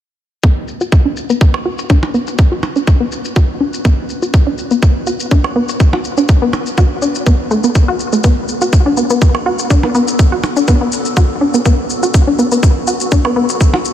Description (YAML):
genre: minimal techno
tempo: 123 BPM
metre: 4/4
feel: swing 53% on 16ths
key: unclear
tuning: A4 = 439 Hz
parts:
  - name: resonant blip pluck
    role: riff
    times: 0.4-13.8 s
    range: A3 to F#4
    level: -16 LUFS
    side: left 1 dB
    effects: chorus, sidechain pumping, ping-pong delay
  - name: electronic kick drum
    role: drums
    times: 0.4-13.7 s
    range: none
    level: -12 LUFS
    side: equal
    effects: none
  - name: shaker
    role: drums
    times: 0.4-13.9 s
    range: none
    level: -26 LUFS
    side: left 5 dB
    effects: low-pass filter on perc, low-pass filter on room
  - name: granular cloud pad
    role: texture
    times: 2.3-13.9 s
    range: B3 to B4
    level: -28 LUFS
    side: left 2 dB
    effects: built-in reverb, sidechain pumping
  - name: percussion blips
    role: percussion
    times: 1.5-13.8 s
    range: none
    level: -25 LUFS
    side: right 2 dB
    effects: ping-pong delay
room: light reverb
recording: none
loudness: -11 LUFS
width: side -11 dB against mid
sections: 0.4-13.9 A section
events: fade-in on ambient pad 0.4-13.9; filter sweep on synth pluck 0.4-13.9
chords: 0.4 B5